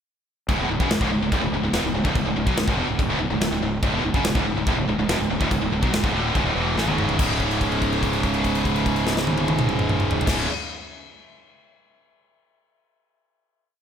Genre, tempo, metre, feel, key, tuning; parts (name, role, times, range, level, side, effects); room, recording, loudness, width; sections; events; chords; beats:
heavy metal; 143 BPM; 4/4; straight; C# minor; A4 = 445 Hz
heavy high-gain guitar; riff; 0.5-10.5 s; C#2 to F#3; -27 LUFS; left 9 dB; distortion, slapback echo
high-gain distorted guitar; riff; 0.5-10.5 s; C#2 to F#3; -26 LUFS; right 8 dB; distortion, slapback echo
tight distorted guitar; riff; 0.5-10.5 s; C#2 to E4; -29 LUFS; left 1 dB; distortion, slapback echo
fuzz fingered electric bass; bass; 0.5-10.4 s; C#1 to B1; -28 LUFS; equal; overdrive
modern studio drum kit; drums; 0.5-10.4 s; china cymbal, crash cymbal, kick drum, snare drum, toms; -25 LUFS; equal
moderate lush hall reverb, RT60 1.8 s, small room ambience; big arena sound; -20 LUFS; side -8 dB against mid
0.5-7.2 riff; 7.2-10.5 final chord
drum fill 6.8-7.2; held note 7.2-10.3
0.5 C#m
| 0.48 0.90 1.32 1.74 | 2.15 2.57 2.99 3.41 | 3.83 4.25 4.67 5.09 | 5.51 5.93 6.35 6.77 | 7.19 7.61 8.03 8.44 | 8.86 9.28 9.70 10.11